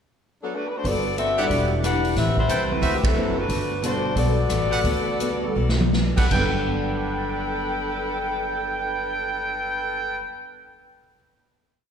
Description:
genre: jazz, big band swing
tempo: 155-183 BPM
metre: 4/4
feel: swing 64% on 8ths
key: G major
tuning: A4 = 438 Hz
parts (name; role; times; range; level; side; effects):
- mellow saxophone section; melody; 0.4-10.2 s; F#3 to G5; -26 LUFS; left 3 dB; none
- picked steel-string acoustic guitar; accompaniment; 0.8-10.4 s; D3 to B4; -32 LUFS; left 2 dB; none
- warm concert grand piano; accompaniment; 0.8-11.2 s; G2 to D7; -31 LUFS; right 2 dB; none
- upright bass; bass; 0.8-10.2 s; E1 to D2; -27 LUFS; equal; none
- swinging big-band drum kit; drums; 0.8-6.4 s; crash cymbal, hi-hat, kick drum, ride cymbal, rim click, snare drum, toms; -26 LUFS; equal; none
- clear trumpet section; stabs; 1.4-10.2 s; F#4 to G5; -28 LUFS; right 2 dB; none
room: wet concert hall reverb, RT60 1.9 s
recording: recorded in a church or concert hall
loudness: -21 LUFS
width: side -7 dB against mid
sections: 0.0-0.8 pickup bar; 0.8-6.3 A section; 6.3-9.4 final chord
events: band accent 3.0; slowing down 3.5-6.3; drum fill 5.6-5.9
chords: 0.0 F#madd11; 0.8 Gmaj9; 1.5 Em9; 2.2 Am9; 2.8 D13; 3.5 Gmaj9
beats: 0.19 0.52 | 0.84 1.17 1.50 1.83 | 2.16 2.49 2.82 3.16 | 3.49 3.82 4.16 4.50 | 4.84 5.20 5.56 5.93 | 6.31 6.70 7.08 7.47 | 7.86 8.24 8.63 9.01

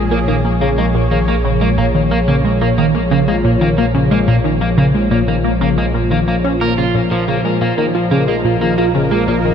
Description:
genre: ambient, sequencer-driven space music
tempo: 90 BPM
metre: 4/4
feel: straight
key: Bb minor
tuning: A4 = 439 Hz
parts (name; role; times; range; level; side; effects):
- sweeping resonant pad; sustained chords; 0.0-9.5 s; Bb2 to Eb5; -17 LUFS; left 1 dB; chorus
- tight sequenced synth; riff; 0.0-9.5 s; Bb2 to F4; -16 LUFS; equal; chorus, phaser, ping-pong delay
- fat analog bass; bass; 0.0-9.5 s; Bb1; -22 LUFS; equal; none
- electric guitar at the edge of break-up; arpeggios; 0.1-9.3 s; F3 to Bb4; -21 LUFS; equal; auto-pan, ping-pong delay
room: moderate huge ambient reverb, RT60 8.1 s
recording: none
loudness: -12 LUFS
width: side -8 dB against mid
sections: 0.0-9.5 A section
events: none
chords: 0.0 Bbm7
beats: 0.11 0.78 1.45 | 2.11 2.78 3.45 4.11 | 4.78 5.45 6.11 6.78 | 7.45 8.11 8.78 9.45

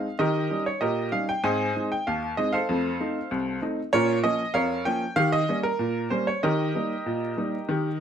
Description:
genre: ragtime piano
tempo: 96 BPM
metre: 2/4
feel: straight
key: unclear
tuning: A4 = 439 Hz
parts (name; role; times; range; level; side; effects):
- bright upright piano; solo; 0.0-8.0 s; C2 to Ab5; -23 LUFS; right 1 dB; none
room: moderate studio reverb, RT60 0.8 s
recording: vinyl crackle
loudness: -23 LUFS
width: side -8 dB against mid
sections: 0.0-8.0 A section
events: none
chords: 0.2 Eb7; 1.4 Ab; 2.7 F7; 3.9 Bbm; 5.2 Eb7; 6.4 Eb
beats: | 0.19 0.82 | 1.44 2.06 | 2.68 3.30 | 3.93 4.55 | 5.17 5.80 | 6.43 7.06 | 7.69

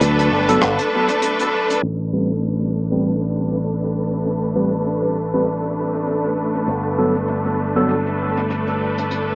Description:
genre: ambient dub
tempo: 99 BPM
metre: 4/4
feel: swing 58% on 16ths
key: unclear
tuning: A4 = 441 Hz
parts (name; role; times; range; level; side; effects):
- bright symphonic string section; sustained chords; 0.0-9.3 s; A3 to B4; -20 LUFS; equal; low-pass filter
- fingered electric bass with an envelope filter; bass; 0.0-9.3 s; G1 to D2; -22 LUFS; equal; tube saturation
- soft brush drum kit; drums; 0.0-9.2 s; hi-hat, rim click; -28 LUFS; left 1 dB; low-pass filter on hats, low-pass filter on snare, low-pass filter on room, dub echo
- tine electric piano; stabs; 0.5-7.9 s; F#3 to B4; -23 LUFS; equal; phaser, low-pass filter, dub echo
- electronic kick drum; drums; 0.6-0.8 s; none; -34 LUFS; equal; none
room: moderate huge ambient reverb, RT60 4.2 s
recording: low-pass filter, small speaker sound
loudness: -17 LUFS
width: side -26 dB against mid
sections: 0.0-1.8 A section; 1.8-9.3 B section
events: filter sweep on string section 1.8-9.3; filter sweep on tine electric piano 1.8-9.3; filter sweep 1.8-9.3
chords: 0.0 Gmaj9; 1.8 Asus2; 6.7 Gadd9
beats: 0.01 0.62 1.22 | 1.83 2.44 3.04 3.65 | 4.25 4.86 5.47 6.07 | 6.68 7.28 7.89 8.50 | 9.10

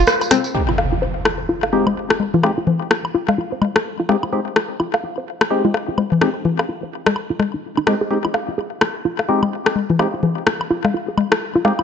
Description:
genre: minimal techno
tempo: 127 BPM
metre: 4/4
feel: swing 60% on 16ths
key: F minor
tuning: A4 = 441 Hz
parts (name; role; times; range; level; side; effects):
- tambourine; percussion; 0.1-0.5 s; none; -29 LUFS; right 5 dB; none
- electronic woodblock, rim click and congas; percussion; 0.2-11.8 s; none; -19 LUFS; left 4 dB; overdrive, ping-pong delay
- hollow square pluck; riff; 0.3-11.8 s; C4 to F5; -22 LUFS; right 1 dB; chorus, cassette tape, ping-pong delay
- percussive organ stab; stabs; 0.5-11.7 s; Ab3 to G4; -22 LUFS; left 2 dB; chorus, phaser, ping-pong delay
- impact; sound effects; 0.5-2.4 s; none; -24 LUFS; right 1 dB; none
room: moderate plate reverb, RT60 1.9 s, digital ambience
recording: dark, warm production, nothing above 8.0 kHz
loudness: -17 LUFS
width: side -7 dB against mid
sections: 0.5-11.8 A section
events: impact 0.5-2.4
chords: 0.0 N.C.; 0.5 Fm7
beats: 0.07 | 0.55 1.02 1.49 1.96 | 2.44 2.91 3.38 3.85 | 4.33 4.80 5.27 5.74 | 6.21 6.69 7.16 7.63 | 8.10 8.58 9.05 9.52 | 9.99 10.47 10.94 11.41

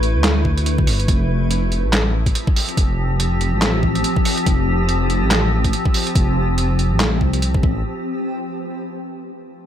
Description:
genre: deep dubstep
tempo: 142 BPM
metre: 4/4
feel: swing 58% on 16ths, half-time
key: unclear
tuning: A4 = 440 Hz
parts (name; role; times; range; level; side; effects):
- granular cloud pad; sustained chords; 0.0-7.8 s; F3 to B4; -22 LUFS; left 1 dB; built-in reverb
- dark detuned saw bass; bass; 0.0-7.8 s; F1 to D2; -19 LUFS; equal; none
- trip hop sampler-style drum kit; drums; 0.0-7.5 s; handclaps, hi-hat, snare drum; -21 LUFS; right 1 dB; overdrive
- electronic kick drum; drums; 0.5-7.7 s; none; -18 LUFS; equal; overdrive
room: digital ambience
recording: none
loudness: -16 LUFS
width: side -10 dB against mid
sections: 0.0-7.8 A section; 7.8-9.5 B section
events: drop 0.0-7.8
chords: 0.0 Asus2; 1.1 Fsus2; 7.6 Asus2; 7.8 N.C.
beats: 0.24 0.66 | 1.08 1.51 1.93 2.35 | 2.77 3.20 3.62 4.04 | 4.46 4.89 5.31 5.73 | 6.16 6.58 7.00 7.42

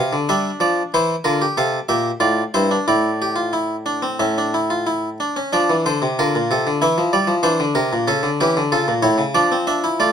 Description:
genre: classical, baroque-style 3-part fugue for harpsichord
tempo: 93 BPM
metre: 4/4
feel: straight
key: D minor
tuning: A4 = 438 Hz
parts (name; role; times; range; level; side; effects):
- harpsichord; solo; 0.0-10.1 s; G2 to F5; -16 LUFS; equal; none
room: light reverb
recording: close, detailed microphones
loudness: -16 LUFS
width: side -8 dB against mid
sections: 0.0-5.5 A section; 5.5-10.1 B section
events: none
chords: 0.3 Gm; 2.9 Asus4; 4.2 A; 5.5 Dm; 6.8 Em7b5; 8.1 A/C#; 9.4 Dm/F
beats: | 0.30 0.94 1.58 2.23 | 2.89 3.55 4.22 4.88 | 5.55 6.20 6.83 7.46 | 8.09 8.73 9.37 10.01

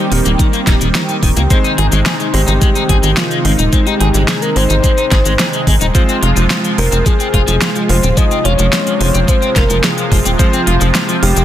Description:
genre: synthwave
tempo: 108 BPM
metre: 4/4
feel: straight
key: Ab major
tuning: A4 = 441 Hz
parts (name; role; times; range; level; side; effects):
- warm analog pad; sustained chords; 0.0-11.4 s; C3 to G4; -19 LUFS; right 2 dB; chorus, sidechain pumping
- electric guitar at the edge of break-up; riff; 0.0-11.4 s; Eb3 to Ab4; -20 LUFS; left 5 dB; wide subtle chorus, tape echo
- warm electric grand piano; stabs; 0.0-11.4 s; G3 to F5; -22 LUFS; equal; tape echo
- tight sequencer bass; bass; 0.1-11.4 s; Eb1 to Db2; -14 LUFS; equal; sidechain pumping
- pop drum kit; drums; 0.1-11.4 s; cabasa, hi-hat, snare drum; -19 LUFS; equal; none
- electronic kick drum; drums; 0.4-10.5 s; none; -13 LUFS; equal; none
- soft octave-layered synth lead; melody; 2.3-11.4 s; Eb4 to Eb5; -19 LUFS; left 2 dB; chorus, tape echo
room: light reverb, digital ambience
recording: dense, heavily limited modern master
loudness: -10 LUFS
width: side -12 dB against mid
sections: 0.0-11.4 A section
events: none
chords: 0.0 Eb; 1.5 Ab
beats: 0.39 0.95 | 1.50 2.06 2.62 3.17 | 3.73 4.28 4.84 5.39 | 5.95 6.50 7.06 7.62 | 8.17 8.73 9.28 9.84 | 10.39 10.95

